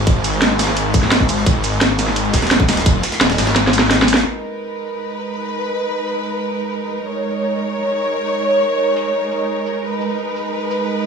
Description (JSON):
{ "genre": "dark technical drum and bass", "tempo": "172 BPM", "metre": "4/4", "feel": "straight", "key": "G# minor", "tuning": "A4 = 440 Hz", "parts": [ { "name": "wide detuned saw bass", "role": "bass", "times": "0.0-4.2 s", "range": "D#1 to G#1", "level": "-17 LUFS", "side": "equal", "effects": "chorus, tube saturation" }, { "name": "breakbeat sampler-style drum kit", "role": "drums", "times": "0.1-4.3 s", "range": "hi-hat, snare drum", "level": "-24 LUFS", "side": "equal", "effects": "overdrive, high-pass filter on hats, high-pass filter on snare, high-pass filter on room" }, { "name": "drum and bass drum kit", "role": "drums", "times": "0.1-10.8 s", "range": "crash cymbal, hi-hat, ride cymbal, shaker, snare drum", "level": "-16 LUFS", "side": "equal", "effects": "low-pass filter on hats, low-pass filter on cymbals, low-pass filter on perc, low-pass filter on snare" }, { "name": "electronic kick drum", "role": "drums", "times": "0.1-2.9 s", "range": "none", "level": "-15 LUFS", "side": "equal", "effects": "none" }, { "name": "rich studio string section", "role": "sustained chords", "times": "4.3-11.1 s", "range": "G#3 to C#5", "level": "-19 LUFS", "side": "right 1 dB", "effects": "sidechain pumping" } ], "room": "light reverb", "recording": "studio ambience", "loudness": "-15 LUFS", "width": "side -6 dB against mid", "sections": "0.0-4.3 A section; 4.3-11.1 B section", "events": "drop 0.0-4.3; kick drops out 3.6-4.3; drum fill 3.6-4.3; filter sweep on drum 4.3-11.1", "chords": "0.0 G#5; 4.3 G#m", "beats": "| 0.07 0.42 0.77 1.12 | 1.47 1.81 2.16 2.51 | 2.86 3.21 3.56 3.91 | 4.25 4.60 4.95 5.30 | 5.65 6.00 6.35 6.70 | 7.05 7.39 7.74 8.09 | 8.44 8.79 9.14 9.49 | 9.84 10.19 10.53 10.88" }